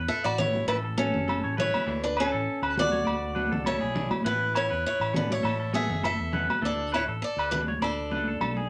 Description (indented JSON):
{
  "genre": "highlife guitar band",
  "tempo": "101 BPM",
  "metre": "4/4",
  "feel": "swing 54% on 16ths",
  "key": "A major",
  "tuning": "A4 = 440 Hz",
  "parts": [
    { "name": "electric guitar at the edge of break-up", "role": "arpeggios", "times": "0.0-8.7 s", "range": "G#4 to D5", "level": "-35 LUFS", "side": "equal", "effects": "none" },
    { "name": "fingered electric bass", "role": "bass", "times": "0.0-8.7 s", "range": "F#1 to E2", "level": "-37 LUFS", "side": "equal", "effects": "none" },
    { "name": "picked swing-style acoustic guitar", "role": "melody", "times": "0.1-8.7 s", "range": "C#4 to E5", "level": "-31 LUFS", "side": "equal", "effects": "none" },
    { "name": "agogo bells", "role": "percussion", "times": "0.3-8.6 s", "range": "none", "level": "-35 LUFS", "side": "equal", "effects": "none" },
    { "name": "semi-hollow electric guitar", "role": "accompaniment", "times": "0.4-8.3 s", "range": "E3 to D4", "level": "-44 LUFS", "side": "equal", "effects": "none" },
    { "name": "congas", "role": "percussion", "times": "0.4-8.7 s", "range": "none", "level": "-34 LUFS", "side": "equal", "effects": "none" }
  ],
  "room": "wet club reverb, RT60 0.7 s",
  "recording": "none",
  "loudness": "-27 LUFS",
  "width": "mono",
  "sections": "0.0-8.7 A section",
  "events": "none",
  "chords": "0.0 Aadd9; 1.9 Dsus2; 4.3 Aadd9; 6.6 D5"
}